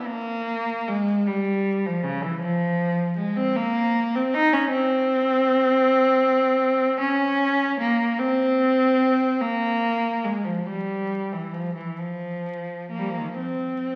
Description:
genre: classical, free, expressive piece for unaccompanied cello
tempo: 37-53 BPM (dotted quarters)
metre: 6/8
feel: rubato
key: unclear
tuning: A4 = 440 Hz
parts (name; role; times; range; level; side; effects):
- rich cello; solo; 0.0-14.0 s; Db3 to Eb4; -23 LUFS; equal; none
room: wet scoring stage reverb, RT60 1.5 s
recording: very old 78 rpm record, vinyl crackle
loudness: -23 LUFS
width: mono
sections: 0.0-14.0 A section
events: none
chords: none

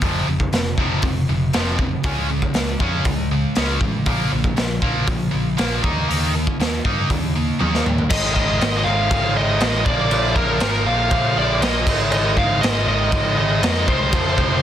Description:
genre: hard rock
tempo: 119 BPM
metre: 4/4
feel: straight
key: unclear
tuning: A4 = 440 Hz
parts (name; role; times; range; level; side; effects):
- high-gain distorted guitar; riff; 0.0-14.6 s; F2 to Eb4; -22 LUFS; equal; distortion
- overdriven picked electric bass; bass; 0.0-14.6 s; F1 to G2; -24 LUFS; equal; none
- raw garage drum kit; drums; 0.0-14.5 s; crash cymbal, hi-hat, kick drum, snare drum, toms; -21 LUFS; equal; none
- bluesy overdriven lead guitar; melody; 8.1-14.6 s; Bb4 to F5; -22 LUFS; equal; distortion, plate reverb
- overdriven tonewheel organ; sustained chords; 8.1-14.6 s; F3 to C5; -30 LUFS; equal; none
room: light reverb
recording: dense, heavily limited modern master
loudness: -17 LUFS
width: side -10 dB against mid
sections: 0.0-8.1 A section; 8.1-14.6 B section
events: drum fill 7.6-8.1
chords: 0.0 F5; 2.0 Db5; 4.1 Bb5; 5.8 Eb5; 8.1 Ab5; 9.9 Bb; 11.9 Ab5

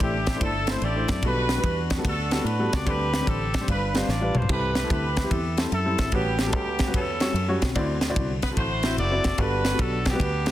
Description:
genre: uptempo gospel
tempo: 147 BPM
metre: 4/4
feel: swing 66% on 8ths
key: G major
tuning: A4 = 440 Hz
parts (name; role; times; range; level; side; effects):
- clear horn section; melody; 0.0-10.5 s; B3 to D5; -28 LUFS; equal; slapback echo
- warm upright piano; accompaniment; 0.0-10.5 s; G2 to E5; -29 LUFS; equal; none
- fingered electric bass; bass; 0.0-10.5 s; F#1 to A2; -28 LUFS; equal; none
- crisp fusion drum kit; drums; 0.0-10.5 s; crash cymbal, kick drum, ride cymbal, snare drum, toms; -26 LUFS; equal; none
room: light reverb, small room ambience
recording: dense, heavily limited modern master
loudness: -22 LUFS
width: side -13 dB against mid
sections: 0.0-10.5 A section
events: drum fill 4.1-4.5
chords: 0.0 C69; 1.2 Gmaj9/B; 2.9 D7sus4; 3.7 G7; 4.5 C6; 6.1 A13; 7.8 D9; 9.4 Gmaj9

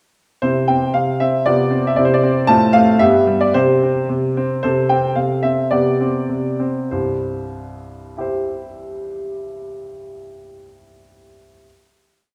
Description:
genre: classical-period piano sonatina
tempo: 94-117 BPM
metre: 2/4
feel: straight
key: C major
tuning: A4 = 440 Hz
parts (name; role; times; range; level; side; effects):
- bright baby grand piano; solo; 0.4-11.7 s; C2 to A5; -18 LUFS; equal; none
room: wet recital hall reverb, RT60 1.6 s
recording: dark, warm production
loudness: -17 LUFS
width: mono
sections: 0.4-4.6 A section; 4.6-6.9 coda; 6.9-9.4 final chord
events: slowing down 4.1-6.9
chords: 0.4 C; 1.5 Dm13/C; 2.0 C; 2.5 F/A; 3.0 G; 3.5 C5; 4.6 C6; 5.7 G/C; 6.9 C

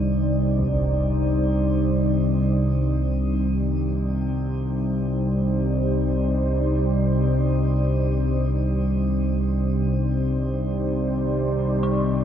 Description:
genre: dark ambient drone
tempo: free time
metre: none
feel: none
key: C minor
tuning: A4 = 442 Hz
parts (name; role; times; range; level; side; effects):
- deep dark ambient pad; sustained chords; 0.0-12.2 s; G3 to D5; -24 LUFS; right 1 dB; chorus, built-in reverb, shimmer reverb
- analog drone; drone; 0.0-12.2 s; C2 to C3; -22 LUFS; equal; chorus
- impact; percussion; 0.6-0.8 s; none; -36 LUFS; right 1 dB; none
- dark detuned synth bell; arpeggios; 11.8-12.2 s; C4; -31 LUFS; left 3 dB; chorus, phaser, shimmer reverb
room: wet lush hall reverb, RT60 2.7 s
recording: dreamy mix soaked in reverb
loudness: -20 LUFS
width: side -9 dB against mid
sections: 0.0-12.2 A section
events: none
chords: 0.0 Cmadd9

